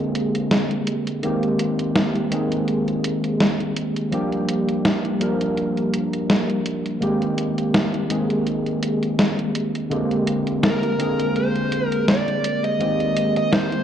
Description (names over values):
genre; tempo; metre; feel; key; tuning
vaporwave; 83 BPM; 4/4; swing 55% on 16ths; Ab lydian; A4 = 440 Hz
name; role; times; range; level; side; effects
overdriven tine electric piano; accompaniment; 0.0-13.8 s; D3 to Bb4; -21 LUFS; equal; analog chorus, analog delay
gated 80s digital drum machine; drums; 0.2-13.8 s; hi-hat, snare drum; -22 LUFS; equal; gated reverb, gated reverb snare
bluesy overdriven lead guitar; melody; 10.6-13.8 s; Bb4 to Eb5; -23 LUFS; equal; distortion, vintage 12-bit sampler grit, analog delay
room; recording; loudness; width
moderate plate reverb, RT60 2.6 s; dark, warm production, cassette tape; -19 LUFS; side -9 dB against mid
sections
0.0-13.8 A section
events
none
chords
0.0 Bb13; 1.2 Abmaj9; 4.1 Gm7; 7.0 Abmaj9; 9.9 Bb13; 12.8 Abmaj9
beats
0.51 | 1.24 1.96 2.68 3.40 | 4.13 4.85 5.57 6.30 | 7.02 7.74 8.47 9.19 | 9.91 10.63 11.36 12.08 | 12.80 13.53